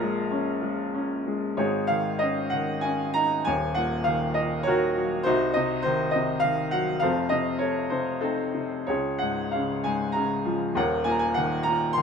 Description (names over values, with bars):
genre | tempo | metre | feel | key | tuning
classical, lyrical solo piano | 91-104 BPM | 3/4 | rubato | unclear | A4 = 439 Hz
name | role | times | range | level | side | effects
bright upright piano | solo | 0.0-12.0 s | Eb1 to C6 | -23 LUFS | equal | none
room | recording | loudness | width
light reverb | minimal, uncompressed stereo recording | -23 LUFS | side -6 dB against mid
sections
0.0-1.6 A section; 1.6-12.0 B section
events
none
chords
0.0 Bbm7; 1.6 Absus4; 3.5 Ebm7; 5.3 Cdim; 7.0 F7; 8.9 Db; 10.8 Ebm7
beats
0.30 0.93 | 1.57 2.21 2.85 | 3.47 4.08 4.68 | 5.27 5.86 6.44 | 7.03 7.62 8.24 | 8.90 9.54 10.16 | 10.76 11.36 11.97